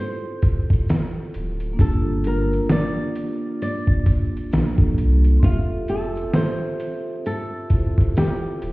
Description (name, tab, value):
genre	lo-fi hip hop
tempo	66 BPM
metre	4/4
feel	swing 59% on 16ths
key	F major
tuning	A4 = 440 Hz
part	flamenco guitar	melody	0.0-8.7 s	F4 to D5	-28 LUFS	equal	low-pass filter
part	vibraphone with soft mallets	accompaniment	0.0-8.7 s	Bb3 to E5	-27 LUFS	right 1 dB	low-pass filter
part	trip hop sampler-style drum kit	drums	0.4-8.7 s	hi-hat, kick drum, snare drum	-19 LUFS	equal	vintage 12-bit sampler grit
part	tube shaker	percussion	0.4-8.7 s	none	-64 LUFS	right 3 dB	none
part	warm sub bass	bass	1.4-8.7 s	D1 to C2	-20 LUFS	equal	none
room	light reverb, small room ambience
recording	heard muffled through a wall, stone room reverb, vinyl crackle, EQ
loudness	-18 LUFS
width	side -21 dB against mid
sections	0.0-8.7 A section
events	none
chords	0.0 Fmaj9; 1.8 Gm9; 5.4 Fmaj9